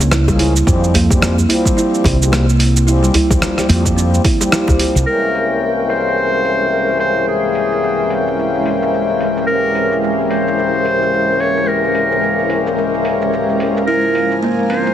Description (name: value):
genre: organic downtempo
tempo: 109 BPM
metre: 4/4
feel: swing 58% on 16ths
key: C phrygian dominant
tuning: A4 = 440 Hz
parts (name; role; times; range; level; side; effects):
- woody fretless electric bass; bass; 0.0-5.0 s; C2 to F2; -14 LUFS; equal; ensemble chorus, sidechain pumping
- dusty soul sampler-style drum kit; drums; 0.0-14.9 s; hi-hat, rim click, shaker; -21 LUFS; right 2 dB; overdrive, low-pass filter on perc, low-pass filter on hats, low-pass filter on snare
- djembe; percussion; 0.0-4.9 s; none; -20 LUFS; equal; none
- buzzing kalimba; arpeggios; 0.1-5.1, 13.9-14.9 s; G3 to E4; -18 LUFS; right 2 dB; ping-pong delay
- pedal harmonium; accompaniment; 0.3-14.9 s; C2 to Ab5; -18 LUFS; left 3 dB; sidechain pumping, ping-pong delay
- electronic kick drum; drums; 0.3-4.8 s; none; -17 LUFS; equal; none
- warm clarinet; melody; 5.1-14.9 s; Ab4 to Db5; -18 LUFS; equal; tape echo
- ethereal airy pad; sustained chords; 6.1-14.9 s; F3 to Bb5; -21 LUFS; equal; ensemble chorus, built-in reverb, tremolo, sidechain pumping
room: moderate lush hall reverb, RT60 2.1 s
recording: heavily compressed radio sound, multiband compression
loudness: -12 LUFS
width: side -10 dB against mid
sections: 0.0-5.1 A section; 5.1-14.9 B section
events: none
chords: 0.0 Db6; 0.7 Fmadd9; 5.1 C7b9b13; 13.9 Db6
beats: 0.12 | 0.67 1.22 1.77 2.32 | 2.87 3.42 3.97 4.52 | 5.07 5.62 6.17 6.72 | 7.27 7.82 8.37 8.92 | 9.47 10.03 10.57 11.13 | 11.68 12.23 12.78 13.33 | 13.88 14.43